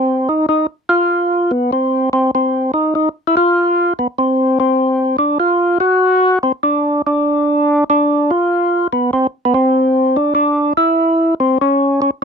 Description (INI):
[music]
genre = jazz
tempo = 97 BPM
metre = 4/4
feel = swing 67% on 8ths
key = unclear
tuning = A4 = 440 Hz
[part]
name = percussive tonewheel organ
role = solo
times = 0.0-12.1 s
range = B3 to Gb4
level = -12 LUFS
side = equal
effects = slow rotary speaker
[sound]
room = light reverb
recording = dry, close 1970s-style studio recording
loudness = -13 LUFS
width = side -6 dB against mid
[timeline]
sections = 0.0-12.2 A section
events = none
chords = none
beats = 0.46 | 1.08 1.70 2.31 2.93 | 3.55 4.17 4.79 5.40 | 6.02 6.64 7.26 7.88 | 8.49 9.11 9.73 10.35 | 10.97 11.59